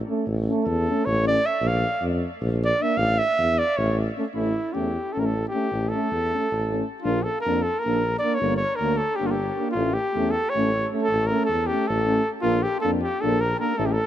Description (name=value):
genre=balkan folk, Balkan brass band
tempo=310 BPM (eighths)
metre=7/8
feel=straight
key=A phrygian dominant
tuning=A4 = 440 Hz
part: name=clear euphonium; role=accompaniment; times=0.1-13.9 s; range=A3 to Bb3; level=-30 LUFS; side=right 5 dB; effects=none
part: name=mellow French horn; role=accompaniment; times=0.1-13.9 s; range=C#4 to D4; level=-31 LUFS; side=left 6 dB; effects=none
part: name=warm tuba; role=bass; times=0.3-14.0 s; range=G1 to F2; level=-26 LUFS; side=equal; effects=none
part: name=clear flugelhorn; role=melody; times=0.6-14.1 s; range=E4 to F5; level=-24 LUFS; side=equal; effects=none
room=moderate huge ambient reverb, RT60 5.1 s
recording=dark, warm production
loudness=-21 LUFS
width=side -11 dB against mid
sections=0.0-4.3 A section; 4.3-14.1 B section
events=flugelhorn solo 0.0-4.3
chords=0.0 A; 1.6 Bb5; 3.0 A5; 4.3 A; 7.0 Bb; 8.4 Gm; 9.8 A; 12.4 Bb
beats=0.07 | 0.26 0.46 0.65 0.85 1.04 1.23 1.43 | 1.62 1.82 2.01 2.20 2.40 2.59 2.79 | 2.98 3.17 3.37 3.56 3.75 3.95 4.14 | 4.33 4.53 4.72 4.92 5.11 5.30 5.50 | 5.69 5.89 6.08 6.27 6.47 6.66 6.86 | 7.05 7.24 7.44 7.63 7.82 8.02 8.21 | 8.40 8.59 8.79 8.98 9.17 9.37 9.56 | 9.75 9.94 10.13 10.33 10.52 10.71 10.90 | 11.10 11.29 11.48 11.67 11.86 12.05 12.25 | 12.44 12.63 12.82 13.01 13.20 13.39 13.59 | 13.78 13.97